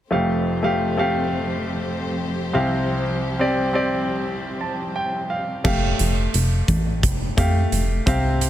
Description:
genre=piano-driven pop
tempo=87 BPM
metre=4/4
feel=straight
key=F major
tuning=A4 = 440 Hz
part: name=clear concert grand piano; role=accompaniment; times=0.1-8.5 s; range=F1 to A5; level=-22 LUFS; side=equal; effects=none
part: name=warm symphonic string section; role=sustained chords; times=0.1-5.6 s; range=F3 to C5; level=-28 LUFS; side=left 1 dB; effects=none
part: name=plucky analog bass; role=bass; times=5.6-8.5 s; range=F1 to F2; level=-20 LUFS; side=equal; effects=none
part: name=huge arena drum kit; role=drums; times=5.6-8.5 s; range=crash cymbal, hi-hat, kick drum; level=-23 LUFS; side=equal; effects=none
room=light reverb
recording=none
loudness=-19 LUFS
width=side -12 dB against mid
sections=0.1-5.7 A section; 5.7-8.5 B section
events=grand piano fill 4.3-5.7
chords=0.1 Fadd9; 2.5 Csus4; 5.7 Fadd9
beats=| 0.12 0.81 1.50 2.19 | 2.88 3.57 4.27 4.96 | 5.65 6.34 7.03 7.73 | 8.42

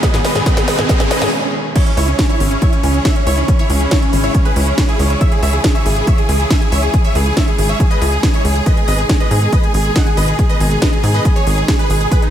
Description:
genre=uplifting trance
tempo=139 BPM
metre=4/4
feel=straight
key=C# minor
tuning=A4 = 441 Hz
part: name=big supersaw lead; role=melody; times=0.0-12.3 s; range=C#4 to G#5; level=-20 LUFS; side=equal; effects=wide subtle chorus, sidechain pumping, analog delay
part: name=clear symphonic string section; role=sustained chords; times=0.0-12.3 s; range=B2 to G#4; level=-24 LUFS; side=equal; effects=sidechain pumping
part: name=electronic kick drum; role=drums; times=0.0-12.2 s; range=none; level=-14 LUFS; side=equal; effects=overdrive, studio reverb
part: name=techno drum kit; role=drums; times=0.0-12.3 s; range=crash cymbal, hi-hat, snare drum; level=-22 LUFS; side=equal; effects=overdrive, studio reverb
part: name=riser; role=sound effects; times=0.0-1.3 s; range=none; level=-21 LUFS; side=right 2 dB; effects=none
part: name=liquid acid bass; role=arpeggios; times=0.1-1.3 s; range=G#2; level=-27 LUFS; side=left 2 dB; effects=none
part: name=wide unison pluck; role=second line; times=1.8-12.3 s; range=C#4 to G#5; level=-24 LUFS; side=right 1 dB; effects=phaser, sidechain pumping, analog delay
part: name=tight sequencer bass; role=bass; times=2.0-12.1 s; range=G#1 to G#2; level=-15 LUFS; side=equal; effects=sidechain pumping
room=light reverb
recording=none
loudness=-12 LUFS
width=side -10 dB against mid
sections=0.0-1.8 A section; 1.8-12.3 B section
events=build-up 0.0-1.8; drum fill 0.0-1.3; riser 0.0-1.3; break 1.3-1.8; drop 1.8-12.3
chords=0.0 G#m; 1.8 C#m; 8.7 G#m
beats=| 0.03 0.46 0.89 1.32 | 1.75 2.19 2.62 3.05 | 3.48 3.91 4.34 4.78 | 5.21 5.64 6.07 6.50 | 6.93 7.37 7.80 8.23 | 8.66 9.09 9.53 9.96 | 10.39 10.82 11.25 11.68 | 12.12

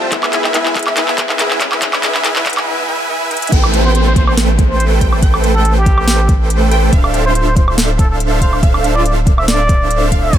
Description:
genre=future bass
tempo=141 BPM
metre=4/4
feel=swing 53% on 16ths, half-time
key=A minor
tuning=A4 = 440 Hz
part: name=clear baby grand piano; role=accompaniment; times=0.0-3.5 s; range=G3 to E5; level=-25 LUFS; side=left 6 dB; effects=sidechain pumping, dub echo
part: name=wide unison pluck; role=arpeggios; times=0.0-2.6 s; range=G#4 to A5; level=-29 LUFS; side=left 2 dB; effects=none
part: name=supersaw chords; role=riff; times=0.0-10.4 s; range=A3 to A5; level=-18 LUFS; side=right 2 dB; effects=sidechain pumping
part: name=riser and downlifter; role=sound effects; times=0.0-6.9 s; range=none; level=-25 LUFS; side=right 1 dB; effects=none
part: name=electronic kick drum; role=drums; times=0.1-10.4 s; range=none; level=-12 LUFS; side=equal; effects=overdrive
part: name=trap drum kit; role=drums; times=0.1-10.4 s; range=crash cymbal, handclaps, hi-hat, snare drum, woodblock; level=-17 LUFS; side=equal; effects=none
part: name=wide unison pluck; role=arpeggios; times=3.5-10.4 s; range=F4 to A5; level=-25 LUFS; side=right 2 dB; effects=phaser, sidechain pumping, dub echo
part: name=saturated sub bass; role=bass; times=3.5-10.4 s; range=D1 to A1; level=-15 LUFS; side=equal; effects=sidechain pumping
part: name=trumpet with plunger mute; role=melody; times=3.8-10.4 s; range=G4 to E5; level=-19 LUFS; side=equal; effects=sidechain pumping, ping-pong delay
room=little or no reverb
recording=high-pass filter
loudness=-11 LUFS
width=side -10 dB against mid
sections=0.0-3.5 A section; 3.5-10.4 B section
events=build-up 0.0-3.5; drum fill 0.0-2.7, 3.3; riser 0.0-2.7; break 2.7-3.5; drop 3.5-10.4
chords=0.1 E; 3.5 Am7; 6.9 Dm7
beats=| 0.12 0.55 0.97 1.40 | 1.82 2.25 2.67 3.10 | 3.52 3.95 4.37 4.80 | 5.22 5.65 6.08 6.50 | 6.93 7.35 7.78 8.20 | 8.63 9.05 9.48 9.91 | 10.33

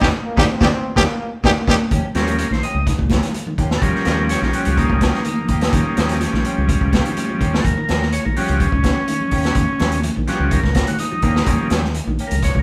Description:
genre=afrobeat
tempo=126 BPM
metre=4/4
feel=straight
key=Eb mixolydian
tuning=A4 = 440 Hz
part: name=growling trumpet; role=melody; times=0.0-1.8 s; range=G4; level=-23 LUFS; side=equal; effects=none
part: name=warm trombone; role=second line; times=0.0-1.7 s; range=G3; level=-31 LUFS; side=equal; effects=none
part: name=combo organ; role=accompaniment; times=0.0-12.6 s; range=F3 to Eb5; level=-24 LUFS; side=equal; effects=none
part: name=semi-hollow electric guitar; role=arpeggios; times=0.0-12.5 s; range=Db3 to G3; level=-30 LUFS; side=equal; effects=none
part: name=clean electric guitar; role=stabs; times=0.0-12.3 s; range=F3 to G4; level=-33 LUFS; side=equal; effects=none
part: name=fingered electric bass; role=bass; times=0.0-12.6 s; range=Bb1 to Eb2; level=-24 LUFS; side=equal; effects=none
part: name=vintage drum kit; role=drums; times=0.0-12.6 s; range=hi-hat, kick drum, snare drum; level=-23 LUFS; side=equal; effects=none
part: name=congas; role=percussion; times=0.0-12.6 s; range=none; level=-28 LUFS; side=equal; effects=none
part: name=shekere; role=percussion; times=0.0-1.8 s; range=none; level=-40 LUFS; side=equal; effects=none
part: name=bright bass trombone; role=second line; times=0.3-1.9 s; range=Bb3 to C4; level=-30 LUFS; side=equal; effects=none
room=moderate large studio reverb, RT60 0.9 s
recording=band playing live in one room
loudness=-18 LUFS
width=mono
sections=0.0-1.9 A section; 1.9-12.6 B section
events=band accent 0.0-1.9; transistor combo organ solo 1.9-12.6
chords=0.0 Eb7; 1.9 Eb9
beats=| 0.02 0.49 0.97 1.44 | 1.92 2.39 2.87 3.35 | 3.83 4.30 4.78 5.26 | 5.74 6.21 6.69 7.17 | 7.65 8.13 8.61 9.08 | 9.56 10.04 10.52 11.00 | 11.47 11.95 12.43

